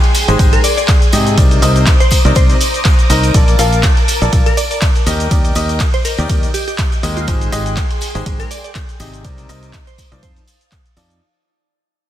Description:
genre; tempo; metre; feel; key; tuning
piano house; 122 BPM; 4/4; swing 55% on 16ths; unclear; A4 = 440 Hz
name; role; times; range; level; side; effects
string machine, violins; sustained chords; 0.0-11.2 s; Ab4 to A6; -23 LUFS; equal; ensemble chorus, sidechain pumping
punchy analog drum machine; drums; 0.0-11.2 s; handclaps, hi-hat, ride cymbal, shaker; -20 LUFS; equal; none
tambourine; percussion; 0.0-11.2 s; none; -29 LUFS; right 1 dB; none
bright upright piano; riff; 0.3-11.2 s; C3 to F5; -19 LUFS; left 2 dB; sidechain pumping, dub echo
fingered electric bass; bass; 0.3-11.2 s; Ab1 to Ab2; -16 LUFS; equal; sidechain pumping
electronic kick drum; drums; 0.4-10.8 s; none; -13 LUFS; equal; none
glassy wavetable pluck; melody; 0.5-10.6 s; F4 to D5; -22 LUFS; left 1 dB; chorus, dub echo
room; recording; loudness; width
little or no reverb; dense, heavily limited modern master; -10 LUFS; side -12 dB against mid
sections
0.0-11.2 A section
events
drop 0.0-11.2; fade-out 3.3-11.2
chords
0.0 Abmaj7; 1.4 Cm9; 3.3 Bbmaj7; 5.1 Ebmaj7; 7.3 Abmaj7; 9.2 Cm9; 10.2 F7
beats
0.39 0.89 | 1.38 1.87 2.36 2.85 | 3.34 3.83 4.33 4.82 | 5.31 5.80 6.29 6.79 | 7.28 7.77 8.26 8.75 | 9.24 9.74 10.23 10.72

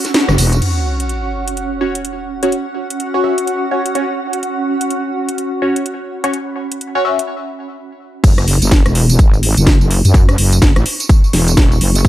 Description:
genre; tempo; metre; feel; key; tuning
bass house; 126 BPM; 4/4; swing 60% on 16ths; unclear; A4 = 440 Hz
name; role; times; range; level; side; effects
house drum kit; drums; 0.0-12.1 s; crash cymbal, hi-hat, rim click, snare drum, tambourine; -17 LUFS; equal; overdrive
granular cloud pad; texture; 0.0-12.1 s; C#4 to C#6; -21 LUFS; right 2 dB; built-in reverb, sidechain pumping
wobble bass; bass; 0.3-0.6, 8.2-12.1 s; E1 to F#2; -13 LUFS; equal; chorus, tube saturation, sidechain pumping
sub drop; sound effects; 0.6-2.5 s; none; -22 LUFS; equal; none
band-passed chord stab; stabs; 1.8-7.2 s; C#4 to E5; -19 LUFS; left 1 dB; phaser, lush chorus, sidechain pumping, digital delay
electronic kick drum; drums; 8.2-12.1 s; none; -10 LUFS; equal; overdrive
room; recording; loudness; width
light reverb; none; -12 LUFS; side -14 dB against mid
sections
0.6-8.2 A section; 8.2-12.1 B section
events
break 0.0-0.6, 7.3-8.2; band accent 0.1; impact 0.6-2.5; drop 8.2-12.1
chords
0.0 F#5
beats
0.14 | 0.62 1.09 1.57 2.05 | 2.52 3.00 3.48 3.95 | 4.43 4.90 5.38 5.86 | 6.33 6.81 7.29 7.76 | 8.24 8.71 9.19 9.67 | 10.14 10.62 11.10 11.57 | 12.05

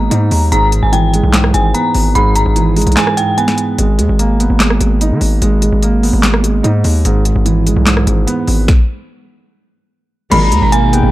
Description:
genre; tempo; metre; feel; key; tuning
hip hop, trap; 147 BPM; 4/4; half-time; G# harmonic minor; A4 = 440 Hz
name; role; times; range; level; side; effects
dark detuned synth bell; melody; 0.0-3.6, 10.3-11.1 s; G5 to B5; -16 LUFS; equal; chorus, tremolo, tape echo
dark concert grand piano; accompaniment; 0.0-11.1 s; G#2 to D#4; -16 LUFS; right 3 dB; none
distorted 808-style bass; bass; 0.0-11.1 s; G#1 to D#3; -13 LUFS; equal; distortion
trap drum kit; drums; 0.1-11.0 s; crash cymbal, handclaps, hi-hat, kick drum, rim click, snare drum; -16 LUFS; equal; none
soft octave-layered synth lead; second line; 10.3-11.1 s; G5 to A#5; -21 LUFS; left 3 dB; chorus, phaser, tape echo
warbly tape-like pad; sustained chords; 10.6-11.1 s; B2 to G#4; -17 LUFS; equal; chorus, built-in reverb
rich symphonic string section; stabs; 10.3-10.5 s; B1 to D#3; -16 LUFS; left 2 dB; none
room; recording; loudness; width
digital ambience; dark, warm production; -10 LUFS; side -16 dB against mid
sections
0.0-10.3 A section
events
kick muted 3.0-3.8; stop 8.7-10.3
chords
0.0 G#madd9; 0.5 E/G#; 3.8 G#madd9; 7.0 E/G#; 8.7 N.C.; 10.3 G#madd9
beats
0.11 | 0.52 0.93 1.34 1.74 | 2.15 2.56 2.97 3.38 | 3.79 4.19 4.60 5.01 | 5.42 5.83 6.23 6.64 | 7.05 7.46 7.87 8.28 | 8.68 9.09 9.50 9.91 | 10.32 10.72

